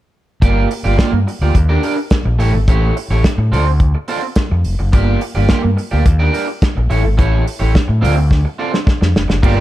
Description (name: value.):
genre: disco.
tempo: 106 BPM.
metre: 4/4.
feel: straight.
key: G minor.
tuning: A4 = 440 Hz.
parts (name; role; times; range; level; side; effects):
electric guitar at the edge of break-up; accompaniment; 0.4-9.6 s; A3 to D5; -19 LUFS; right 3 dB; lush chorus.
overdriven fingered electric bass; bass; 0.4-9.6 s; F1 to A2; -14 LUFS; equal; none.
warm soul drum kit; drums; 0.4-9.6 s; crash cymbal, hi-hat, kick drum, snare drum; -15 LUFS; equal; none.
room: little or no reverb.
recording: dark, warm production.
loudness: -12 LUFS.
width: side -15 dB against mid.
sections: 0.4-9.4 A section.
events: drum fill 8.3-9.4.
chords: 0.4 Gm7; 1.6 Ebmaj7; 2.4 A7; 3.5 Dm7; 4.9 Gm7; 6.1 Ebmaj7; 6.9 A7; 8.0 Dm7.